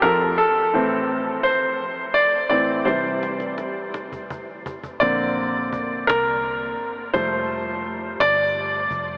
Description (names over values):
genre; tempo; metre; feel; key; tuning
six-eight pop ballad; 56 BPM (dotted quarters); 6/8; straight; F major; A4 = 439 Hz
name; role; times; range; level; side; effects
bright concert grand piano; accompaniment; 0.0-9.2 s; F2 to D5; -19 LUFS; equal; none
cajon; drums; 2.9-9.1 s; none; -32 LUFS; equal; none
vintage muted fingered electric bass; bass; 5.0-9.2 s; F1 to C2; -38 LUFS; equal; none
room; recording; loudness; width
wet huge ambient reverb, RT60 7.7 s; dreamy mix soaked in reverb, AM radio sound; -19 LUFS; side -38 dB against mid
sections
0.0-5.0 A section; 5.0-9.2 B section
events
grand piano solo 0.0-5.0, 5.0-9.2; drum fill 2.9-5.0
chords
0.0 F; 0.7 Am; 2.9 C; 5.0 Bbadd9; 7.1 Fadd9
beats
| 0.74 1.80 | 2.87 3.94 | 5.01 6.08 | 7.14 8.20